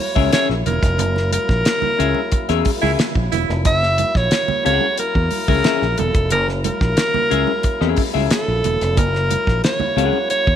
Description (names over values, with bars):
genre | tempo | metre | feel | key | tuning
funk | 90 BPM | 4/4 | straight | F# mixolydian | A4 = 440 Hz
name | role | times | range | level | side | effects
breathy alto saxophone | melody | 0.0-10.6 s | A4 to E5 | -19 LUFS | equal | none
tonewheel organ | sustained chords | 0.0-10.6 s | F#3 to E4 | -30 LUFS | equal | fast rotary speaker, overdrive
clean electric guitar | accompaniment | 0.2-10.2 s | C#4 to F#5 | -22 LUFS | left 12 dB | wide subtle chorus
fingered electric bass | bass | 0.2-10.6 s | E1 to E2 | -21 LUFS | equal | none
damped 70s drum kit | drums | 0.2-10.6 s | hi-hat, kick drum, snare drum | -20 LUFS | equal | none
congas | percussion | 0.2-10.5 s | none | -28 LUFS | right 12 dB | none
warm baritone saxophone | second line | 2.8-3.5 s | E4 | -24 LUFS | right 10 dB | none
room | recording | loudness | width
light reverb, studio reverb | 1960s-style stereo with parts hard left and right | -15 LUFS | side -9 dB against mid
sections
0.0-10.6 A section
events
band accent 1.0-3.7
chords
0.0 F#9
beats
0.33 | 0.99 1.66 2.32 2.99 | 3.65 4.32 4.99 5.65 | 6.32 6.98 7.64 8.31 | 8.97 9.64 10.30